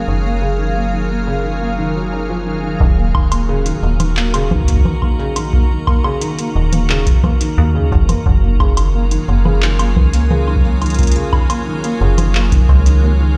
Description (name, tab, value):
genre	IDM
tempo	88 BPM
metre	4/4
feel	straight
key	Eb minor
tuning	A4 = 438 Hz
part	icy glass pad	sustained chords	0.0-13.4 s	Gb3 to F5	-26 LUFS	equal	chorus, built-in reverb
part	metallic FM bass	bass	0.0-13.4 s	Eb1 to Eb2	-18 LUFS	equal	none
part	felt-muted upright piano	arpeggios	0.1-13.3 s	Eb2 to Eb4	-24 LUFS	equal	tape echo
part	electronic kick drum	drums	2.8-12.8 s	none	-17 LUFS	equal	none
part	booming analog drum machine	drums	3.1-13.0 s	congas, handclaps, hi-hat, woodblock	-24 LUFS	equal	low-pass filter on perc, low-pass filter on hats, low-pass filter on snare, delay
room	light reverb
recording	played on a big sound system in a bare room, large studio reverb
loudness	-15 LUFS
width	mono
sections	0.0-2.8 A section; 2.8-13.4 B section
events	none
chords	0.0 Gbmaj7; 2.8 Ebm; 8.3 Gbmaj7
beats	| 0.08 0.76 1.44 2.12 | 2.81 3.49 4.17 4.85 | 5.53 6.21 6.90 7.58 | 8.26 8.94 9.62 10.30 | 10.99 11.67 12.35 13.03